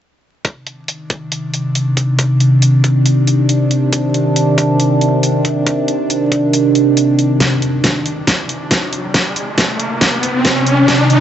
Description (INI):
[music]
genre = deep dubstep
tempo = 138 BPM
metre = 4/4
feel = swing 58% on 16ths, half-time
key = C minor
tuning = A4 = 440 Hz
[part]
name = overtone-sweeping drone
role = sustained chords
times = 1.3-11.2 s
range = C3 to Eb4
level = -13 LUFS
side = equal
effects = chorus, built-in reverb
[part]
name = dubstep drum kit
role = drums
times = 0.4-11.2 s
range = hi-hat, snare drum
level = -17 LUFS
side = equal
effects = high-pass filter on hats, low-pass filter on hats, high-pass filter on snare, low-pass filter on snare
[part]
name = electronic kick drum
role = drums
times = 0.4-11.0 s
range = none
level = -20 LUFS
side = equal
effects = high-pass filter on kick
[part]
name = riser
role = sound effects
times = 8.8-11.2 s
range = none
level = -16 LUFS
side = equal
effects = none
[sound]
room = wet echo chamber reverb, RT60 2.3 s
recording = vinyl crackle, nothing above 7.9 kHz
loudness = -12 LUFS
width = side -10 dB against mid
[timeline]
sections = 0.4-7.4 A section; 7.4-11.2 B section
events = build-up 7.4-11.2; drum fill 7.4-11.2; riser 8.8-11.2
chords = 0.4 Cmadd9